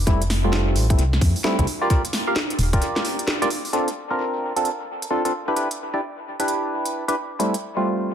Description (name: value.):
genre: UK garage, two-step garage.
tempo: 131 BPM.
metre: 4/4.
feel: swing 63% on 16ths.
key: Bb major.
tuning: A4 = 440 Hz.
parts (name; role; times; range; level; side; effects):
organ-like FM bass; bass; 0.0-2.8 s; Eb1 to F2; -20 LUFS; equal; none.
percussive organ stab; stabs; 0.1-8.1 s; G3 to F5; -23 LUFS; equal; chorus, dub echo.
electronic kick drum; drums; 0.1-2.8 s; none; -21 LUFS; equal; none.
garage drum kit; drums; 0.1-7.6 s; hi-hat, snare drum; -26 LUFS; equal; tape echo.
room: moderate spring reverb, RT60 1.8 s.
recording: echo-heavy mix.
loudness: -20 LUFS.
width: side -9 dB against mid.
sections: 0.0-3.7 A section; 3.7-8.1 B section.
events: break 2.8-3.7; band accent 3.3.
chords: 0.0 Fmaj9; 1.7 Ebmaj9 (rootless); 3.7 Bbmaj9; 5.3 G6/D; 7.2 Fmaj9.